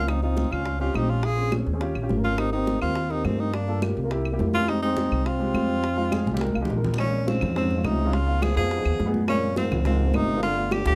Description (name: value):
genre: Afro-Cuban jazz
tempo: 209 BPM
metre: 4/4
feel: straight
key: unclear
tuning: A4 = 440 Hz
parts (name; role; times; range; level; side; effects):
- breathy tenor saxophone; melody; 0.0-10.9 s; C4 to Ab4; -30 LUFS; equal; none
- warm trombone; second line; 0.0-10.9 s; Ab2 to F4; -34 LUFS; equal; none
- dark baby grand piano; accompaniment; 0.0-10.9 s; Ab3 to Ab5; -32 LUFS; equal; none
- upright bass; bass; 0.0-10.9 s; G1 to G2; -29 LUFS; equal; none
- bongos; percussion; 0.1-10.9 s; none; -38 LUFS; equal; none
- claves; percussion; 0.1-10.9 s; none; -40 LUFS; equal; none
- congas; percussion; 0.1-10.9 s; none; -33 LUFS; equal; none
room: moderate studio ambience, RT60 0.5 s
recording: dark, warm production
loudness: -24 LUFS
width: mono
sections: 0.0-7.0 A section; 7.0-10.9 B section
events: grand piano fill 6.1-7.0; drum fill 6.3-7.0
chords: 0.1 Dbmaj9; 1.2 Bbm7; 1.8 Eb7; 2.4 Abmaj7; 3.5 Gm7; 4.1 C7; 4.7 Fm9; 7.0 Bbm11; 8.1 Db9; 9.3 Gbmaj9#11; 10.4 G7